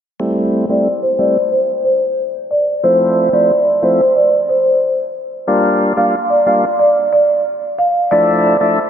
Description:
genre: dancehall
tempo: 91 BPM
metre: 4/4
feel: straight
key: unclear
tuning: A4 = 441 Hz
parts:
  - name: tonewheel organ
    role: accompaniment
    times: 0.2-8.8 s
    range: F3 to F4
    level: -17 LUFS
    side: left 1 dB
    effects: overdrive, slow rotary speaker, low-pass filter
  - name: marimba with medium mallets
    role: melody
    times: 0.7-8.7 s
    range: C5 to F5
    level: -13 LUFS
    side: equal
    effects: low-pass filter, tape echo
room: wet lush hall reverb, RT60 2.9 s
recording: dreamy mix soaked in reverb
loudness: -12 LUFS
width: side -8 dB against mid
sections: 0.2-8.9 A section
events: filter sweep 0.2-8.9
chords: 0.2 Am7; 2.8 Fmaj7; 5.5 Gm7; 8.1 Dmadd9

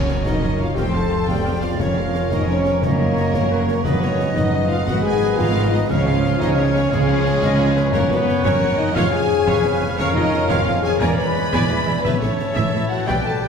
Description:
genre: cinematic, heroic adventure film score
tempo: 117 BPM (dotted quarters)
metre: 12/8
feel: straight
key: unclear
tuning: A4 = 441 Hz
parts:
  - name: rich studio violin section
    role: melody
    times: 0.0-13.5 s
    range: G#4 to B5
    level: -30 LUFS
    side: left 4 dB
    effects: none
  - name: dark studio violin section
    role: second line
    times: 0.0-13.5 s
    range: G#4 to B5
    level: -30 LUFS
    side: equal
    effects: none
  - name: mellow clarinet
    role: second line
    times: 0.0-13.5 s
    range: A4 to E5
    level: -29 LUFS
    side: equal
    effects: none
  - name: mellow cor anglais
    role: second line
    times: 0.0-13.5 s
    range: C5 to A5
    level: -32 LUFS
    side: right 3 dB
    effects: none
  - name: mellow French horn section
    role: sustained chords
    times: 0.0-13.5 s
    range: G#3 to B4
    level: -23 LUFS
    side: left 3 dB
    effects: none
  - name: mellow trombone section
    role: sustained chords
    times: 0.0-13.5 s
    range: D#3 to C#4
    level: -29 LUFS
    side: right 3 dB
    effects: none
  - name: concert harp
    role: arpeggios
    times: 0.0-13.5 s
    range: E2 to C#6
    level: -28 LUFS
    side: left 4 dB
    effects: none
  - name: rich studio cello section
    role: bass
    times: 0.0-13.1 s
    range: E2 to C#3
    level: -26 LUFS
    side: right 2 dB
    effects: none
  - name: rich symphonic double bass section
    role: bass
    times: 0.0-13.2 s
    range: E1 to C#2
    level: -25 LUFS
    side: right 2 dB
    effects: none
  - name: timpani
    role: percussion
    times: 0.0-4.3, 7.9-8.4 s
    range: F#2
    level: -28 LUFS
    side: right 1 dB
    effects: none
  - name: clear symphonic viola section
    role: accompaniment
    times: 0.1-13.2 s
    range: E#4 to G#5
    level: -30 LUFS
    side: right 2 dB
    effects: none
  - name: concert snare drum, concert bass drum and clash cymbals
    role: drums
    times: 0.1-13.2 s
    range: none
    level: -25 LUFS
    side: equal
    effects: none
  - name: silver concert flute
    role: second line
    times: 0.8-13.5 s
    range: A#4 to E#5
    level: -29 LUFS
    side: equal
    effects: none
room: wet scoring stage reverb, RT60 2.0 s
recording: heard from further back in the room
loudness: -16 LUFS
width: side -6 dB against mid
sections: 0.0-13.5 A section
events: none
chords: 0.0 F#; 0.8 F; 1.8 A#m/E#; 2.8 F#; 3.9 B/F#; 4.9 G#madd9; 5.9 C#; 7.9 F#; 9.0 C#/E#; 10.0 A#m/E#; 11.0 E7; 12.0 A

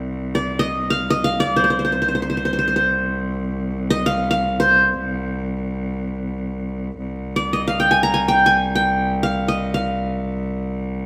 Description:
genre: Turkish makam ensemble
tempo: free time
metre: none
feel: none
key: C makam ussak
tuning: A4 = 440 Hz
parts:
  - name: bright cello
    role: drone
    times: 0.0-11.1 s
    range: C2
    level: -27 LUFS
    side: equal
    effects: none
  - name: qanun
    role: melody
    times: 0.3-10.7 s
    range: C5 to Bb5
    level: -20 LUFS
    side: equal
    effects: none
room: moderate concert hall reverb, RT60 1.9 s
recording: close, detailed microphones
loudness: -20 LUFS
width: mono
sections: 0.0-7.0 A section; 7.0-11.1 A section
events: none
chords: none

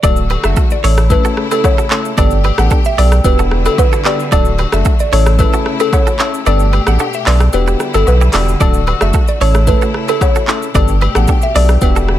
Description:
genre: afrobeats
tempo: 112 BPM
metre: 4/4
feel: straight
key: D major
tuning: A4 = 440 Hz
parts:
  - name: mallet-like synth pluck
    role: melody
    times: 0.0-11.9 s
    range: A4 to F#5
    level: -18 LUFS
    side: equal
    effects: chorus, phaser, digital delay
  - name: soft electric-piano-like synth keys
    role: accompaniment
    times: 0.0-12.2 s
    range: A3 to A4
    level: -21 LUFS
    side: left 2 dB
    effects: chorus
  - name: clear studio string section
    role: sustained chords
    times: 0.0-12.2 s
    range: B2 to G4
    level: -23 LUFS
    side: left 2 dB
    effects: none
  - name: direct-recorded clean electric guitar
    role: riff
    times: 0.0-12.0 s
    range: D4 to D5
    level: -22 LUFS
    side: right 8 dB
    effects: digital delay
  - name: saturated sub bass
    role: bass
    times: 0.0-12.2 s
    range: D1 to B1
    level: -12 LUFS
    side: equal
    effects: none
  - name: afro-pop drum kit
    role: drums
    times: 0.0-12.2 s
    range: handclaps, hi-hat, kick drum, rim click, shaker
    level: -15 LUFS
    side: equal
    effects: none
  - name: agogo bells and woodblock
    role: percussion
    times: 0.0-11.9 s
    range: none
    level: -23 LUFS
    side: left 8 dB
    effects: none
room: digital ambience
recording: none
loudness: -10 LUFS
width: side -12 dB against mid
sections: 0.0-12.2 A section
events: kick muted 6.5-8.6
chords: 0.0 D; 0.8 A; 2.2 Gadd9; 3.2 Em7; 4.3 D; 5.1 A; 6.5 Gadd9; 7.5 Em7; 8.6 D; 9.4 A; 10.7 Gadd9

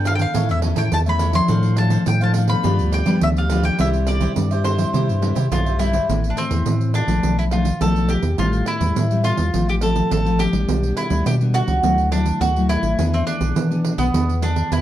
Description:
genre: samba and choro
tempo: 104 BPM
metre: 4/4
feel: straight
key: C major, A minor from 6.1 s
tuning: A4 = 444 Hz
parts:
  - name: mandolin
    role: melody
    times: 0.0-14.8 s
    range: B3 to C6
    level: -24 LUFS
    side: equal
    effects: none
  - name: cavaquinho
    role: accompaniment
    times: 0.0-6.1 s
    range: D4 to G5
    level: -28 LUFS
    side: right 2 dB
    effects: none
  - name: nylon-string guitar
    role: accompaniment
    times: 0.0-14.8 s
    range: G2 to A4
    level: -23 LUFS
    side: left 3 dB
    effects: none
  - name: rubbery square bass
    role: bass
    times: 0.0-14.8 s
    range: A1 to G3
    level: -20 LUFS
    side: equal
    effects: none
  - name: pandeiro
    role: percussion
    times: 0.1-14.8 s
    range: none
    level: -25 LUFS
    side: right 6 dB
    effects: none
room: moderate studio reverb, RT60 0.9 s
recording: dark, warm production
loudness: -16 LUFS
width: side -12 dB against mid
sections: 0.0-6.1 A section; 6.1-14.8 B section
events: none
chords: 0.4 A; 1.5 Dm7/A; 2.6 G7; 3.8 C; 6.1 Am; 7.2 Bm7b5; 8.4 Am7; 9.5 F/A; 10.7 G/B; 11.8 Dadd9; 13.0 E7

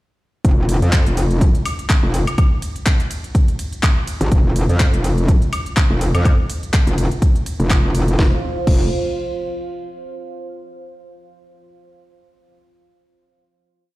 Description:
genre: bass house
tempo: 124 BPM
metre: 4/4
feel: swing 56% on 16ths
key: unclear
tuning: A4 = 440 Hz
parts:
  - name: deep dark ambient pad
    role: sustained chords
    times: 2.6-8.4 s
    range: F4 to F5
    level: -29 LUFS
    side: right 3 dB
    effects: chorus, built-in reverb, sidechain pumping
  - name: metallic wobble bass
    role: bass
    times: 0.4-8.9 s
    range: F1 to F2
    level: -17 LUFS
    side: equal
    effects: distortion, chorus, tube saturation, sidechain pumping
  - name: electronic kick drum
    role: drums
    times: 0.4-8.8 s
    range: none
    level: -15 LUFS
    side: equal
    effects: overdrive
  - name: garage drum kit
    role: drums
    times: 0.4-8.8 s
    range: crash cymbal, handclaps, hi-hat, ride cymbal, snare drum, woodblock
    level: -25 LUFS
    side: equal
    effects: none
room: digital ambience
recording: played on a big sound system in a bare room, large studio reverb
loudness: -15 LUFS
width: side -18 dB against mid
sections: 0.4-8.2 drop; 8.2-10.1 final chord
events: drop 0.4-8.2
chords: 0.4 F5

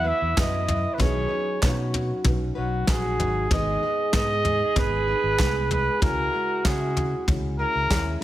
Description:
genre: indie folk with a building arrangement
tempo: 96 BPM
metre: 4/4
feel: straight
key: unclear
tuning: A4 = 440 Hz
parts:
  - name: mellow trumpet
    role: melody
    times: 0.0-8.2 s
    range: F#4 to E5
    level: -26 LUFS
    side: equal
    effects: none
  - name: warm French horn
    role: second line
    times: 0.0-7.9 s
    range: E4 to G#4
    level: -29 LUFS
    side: right 3 dB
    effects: none
  - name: felt-muted upright piano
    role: accompaniment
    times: 0.0-8.2 s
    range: G#1 to C#5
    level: -37 LUFS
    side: right 2 dB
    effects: none
  - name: picked plugged-in steel-string acoustic guitar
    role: accompaniment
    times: 0.0-8.2 s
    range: G#2 to B4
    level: -35 LUFS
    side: left 7 dB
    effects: none
  - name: fingered electric bass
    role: bass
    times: 0.0-8.1 s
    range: G#1 to C#3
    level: -28 LUFS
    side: equal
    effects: none
  - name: soft brush drum kit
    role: drums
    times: 0.4-8.1 s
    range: kick drum, snare drum, toms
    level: -25 LUFS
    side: equal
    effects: none
  - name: group handclap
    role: percussion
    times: 0.4-8.1 s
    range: none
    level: -34 LUFS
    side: right 2 dB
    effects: none
room: light reverb, studio ambience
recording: none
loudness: -21 LUFS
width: side -14 dB against mid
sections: 0.0-8.2 A section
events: none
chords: 0.0 Esus2; 1.0 Badd9; 3.5 G#m; 6.0 C#m

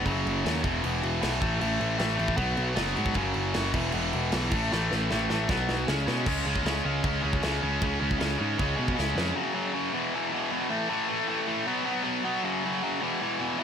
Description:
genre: punk rock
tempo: 155 BPM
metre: 4/4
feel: straight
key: unclear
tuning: A4 = 443 Hz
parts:
  - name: tight distorted guitar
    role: riff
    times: 0.0-13.6 s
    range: E2 to C#4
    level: -27 LUFS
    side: left 1 dB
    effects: distortion
  - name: fuzz picked electric bass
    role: bass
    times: 0.0-9.3 s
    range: E1 to B2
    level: -30 LUFS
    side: equal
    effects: overdrive
  - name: big rock drum kit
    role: drums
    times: 0.1-9.3 s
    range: crash cymbal, kick drum, snare drum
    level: -32 LUFS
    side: right 1 dB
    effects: none
room: little or no reverb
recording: none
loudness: -25 LUFS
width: side -7 dB against mid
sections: 0.0-6.3 A section; 6.3-9.4 B section; 9.4-13.6 C section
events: drum fill 4.7-6.3, 9.0-9.4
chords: 0.1 F#5; 0.6 E5; 1.4 A5; 2.4 B5; 3.2 F#5; 3.8 E5; 4.5 A5; 5.5 B5; 5.9 C#5; 9.4 F#5; 9.9 E5; 10.7 A5; 11.7 B5; 12.4 F#5; 13.0 E5

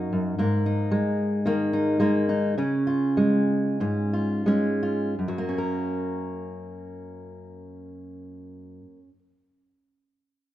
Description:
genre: folk, solo fingerstyle acoustic guitar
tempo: 80-116 BPM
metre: 4/4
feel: straight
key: F# major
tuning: A4 = 437 Hz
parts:
  - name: fingerpicked steel-string acoustic guitar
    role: solo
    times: 0.0-9.2 s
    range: F#2 to A#4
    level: -24 LUFS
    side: equal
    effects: none
room: wet large studio reverb, RT60 1.3 s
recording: minimal, uncompressed stereo recording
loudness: -22 LUFS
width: side -13 dB against mid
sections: 0.0-5.2 A section; 5.2-10.5 B section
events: slowing down 0.4-5.2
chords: 0.4 G#sus2; 2.6 C#; 5.2 F#

